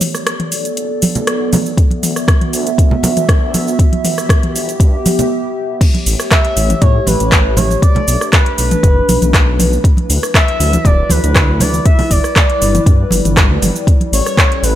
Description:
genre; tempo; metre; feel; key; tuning
afro house; 119 BPM; 4/4; straight; unclear; A4 = 436 Hz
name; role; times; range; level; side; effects
dark analog pad; sustained chords; 0.0-14.8 s; F#3 to E5; -20 LUFS; equal; chorus, phaser, sidechain pumping
dark detuned saw bass; bass; 0.0-14.8 s; D1 to A2; -17 LUFS; equal; tube saturation, sidechain pumping, high-pass filter
afro-pop drum kit; drums; 0.0-14.7 s; cabasa, crash cymbal, handclaps, hi-hat, rim click, toms; -16 LUFS; equal; small room reverb
congas; percussion; 1.0-14.1 s; none; -18 LUFS; right 2 dB; none
electronic kick drum; drums; 1.8-14.5 s; none; -11 LUFS; equal; small room reverb
expressive synth lead; melody; 6.3-14.8 s; B4 to E5; -19 LUFS; left 1 dB; wide subtle chorus, cassette tape, tape echo
room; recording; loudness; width
light reverb, digital ambience; none; -10 LUFS; side -12 dB against mid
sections
0.0-5.8 A section; 5.8-14.8 B section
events
build-up 0.0-5.8; break 5.3-5.8; drop 5.8-14.8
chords
0.0 Bm7; 1.8 D69; 3.8 G6; 5.8 A7; 7.8 Bm7; 9.8 D69; 11.9 G6; 13.9 A7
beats
0.26 0.77 1.27 | 1.77 2.28 2.78 3.29 | 3.79 4.30 4.80 5.30 | 5.81 6.31 6.82 7.32 | 7.83 8.33 8.83 9.34 | 9.84 10.35 10.85 11.36 | 11.86 12.36 12.87 13.37 | 13.88 14.38

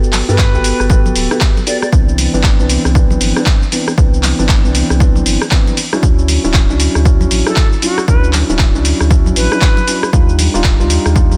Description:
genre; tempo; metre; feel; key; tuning
deep house; 117 BPM; 4/4; swing 61% on 16ths; unclear; A4 = 441 Hz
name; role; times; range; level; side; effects
felt-muted upright piano; stabs; 0.0-11.4 s; E3 to A4; -20 LUFS; equal; sidechain pumping, digital delay
warm sub bass; bass; 0.0-11.4 s; D1 to G2; -18 LUFS; equal; sidechain pumping
punchy analog drum machine; drums; 0.0-11.4 s; handclaps, hi-hat, rim click, shaker; -20 LUFS; equal; none
congas; percussion; 0.1-11.4 s; none; -27 LUFS; equal; none
hollow concert flute; melody; 0.3-1.9, 7.5-10.1 s; F#4 to D5; -24 LUFS; equal; tape echo
electronic kick drum; drums; 0.4-11.3 s; none; -14 LUFS; equal; none
room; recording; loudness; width
small room reverb; dense, heavily limited modern master; -12 LUFS; mono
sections
0.0-11.4 A section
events
none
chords
0.0 Gmaj9; 1.9 Cmaj9; 5.8 Dmaj9; 10.1 Ebmaj9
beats
0.39 0.90 1.41 | 1.93 2.44 2.95 3.46 | 3.98 4.49 5.00 5.52 | 6.03 6.54 7.05 7.57 | 8.08 8.59 9.11 9.62 | 10.13 10.64 11.16

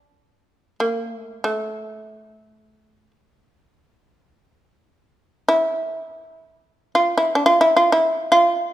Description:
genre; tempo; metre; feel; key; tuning
japanese traditional, Japanese chamber music; free time; none; none; D hirajoshi; A4 = 435 Hz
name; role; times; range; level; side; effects
shamisen; solo; 0.0-8.7 s; A3 to F4; -17 LUFS; equal; none
room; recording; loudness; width
moderate recital hall reverb, RT60 1.6 s; minimal, uncompressed stereo recording; -17 LUFS; side -13 dB against mid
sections
0.0-8.7 A section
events
none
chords
none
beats
free time

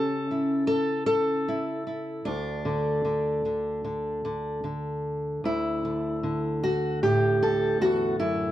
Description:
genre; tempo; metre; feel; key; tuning
folk, solo fingerstyle acoustic guitar; 76 BPM; 4/4; straight; D major; A4 = 440 Hz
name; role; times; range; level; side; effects
fingerpicked steel-string acoustic guitar; solo; 0.0-8.5 s; D2 to A4; -24 LUFS; equal; none
room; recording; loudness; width
light reverb; dark, warm production; -24 LUFS; side -13 dB against mid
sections
0.0-5.4 A section; 5.4-8.5 B section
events
none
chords
0.0 A/C#; 2.3 N.C.; 5.4 Dsus2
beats
0.69 1.48 | 2.26 3.05 3.84 4.64 | 5.44 6.23 7.02 7.81

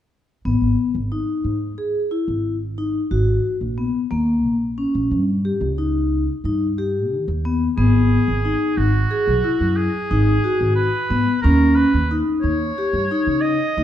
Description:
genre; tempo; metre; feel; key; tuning
contemporary instrumental, chamber music in an uneven meter; 180 BPM (eighths); 11/8; straight; G# minor; A4 = 440 Hz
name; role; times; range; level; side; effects
vibraphone with medium hard mallets; arpeggios; 0.5-13.8 s; A#3 to G#4; -20 LUFS; left 2 dB; none
upright bass; bass; 0.5-13.8 s; G#1 to D#3; -21 LUFS; right 1 dB; none
clear oboe; melody; 7.8-13.8 s; F#4 to D#5; -24 LUFS; right 2 dB; none
room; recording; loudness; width
moderate recital hall reverb, RT60 1.7 s; dark, warm production; -17 LUFS; side -11 dB against mid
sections
0.5-7.8 A section; 7.8-13.8 B section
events
none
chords
0.5 G#m; 4.1 D#7; 7.8 G#m7; 11.4 D#7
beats
| 0.46 0.79 1.12 1.45 1.79 2.12 2.45 2.78 3.12 3.45 3.78 | 4.11 4.45 4.78 5.11 5.45 5.78 6.11 6.44 6.78 7.11 7.44 | 7.77 8.11 8.44 8.77 9.11 9.44 9.77 10.11 10.44 10.77 11.11 | 11.44 11.77 12.10 12.44 12.77 13.10 13.44 13.77

